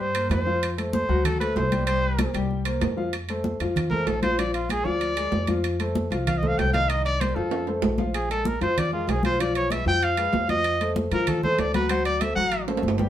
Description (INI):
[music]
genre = Afro-Cuban jazz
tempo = 192 BPM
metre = 4/4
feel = straight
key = F mixolydian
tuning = A4 = 437 Hz
[part]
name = breathy trumpet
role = melody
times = 0.0-12.7 s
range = F4 to G5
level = -26 LUFS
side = right 1 dB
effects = none
[part]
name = warm baby grand piano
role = accompaniment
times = 0.0-13.1 s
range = Eb3 to G5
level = -27 LUFS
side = left 3 dB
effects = none
[part]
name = upright bass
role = bass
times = 0.0-13.1 s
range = G1 to A2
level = -29 LUFS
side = equal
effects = none
[part]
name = congas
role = percussion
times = 0.0-13.1 s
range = none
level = -30 LUFS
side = equal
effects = none
[part]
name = timbales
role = percussion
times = 0.1-13.1 s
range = none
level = -31 LUFS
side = right 6 dB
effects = none
[sound]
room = wet studio reverb, RT60 0.6 s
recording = band playing live in one room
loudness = -22 LUFS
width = side -11 dB against mid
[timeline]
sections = 0.0-3.1 A section; 3.1-13.1 A section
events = trumpet solo 0.0-13.1; drum fill 7.5-8.1, 12.7-13.1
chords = 0.0 C5; 0.6 F; 1.2 D7; 1.9 C5; 3.1 F; 4.4 Bb7; 5.6 F7; 6.9 Cm7; 7.5 F; 8.1 Bb5; 9.4 Fdim; 10.6 F7; 11.9 D7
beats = 0.00 0.31 | 0.62 0.93 1.25 1.56 | 1.87 2.19 2.50 2.81 | 3.13 3.44 3.76 4.07 | 4.38 4.70 5.01 5.33 | 5.64 5.95 6.27 6.58 | 6.89 7.21 7.52 7.83 | 8.15 8.46 8.77 9.08 | 9.40 9.71 10.02 10.34 | 10.65 10.96 11.27 11.59 | 11.90 12.21 12.52 12.83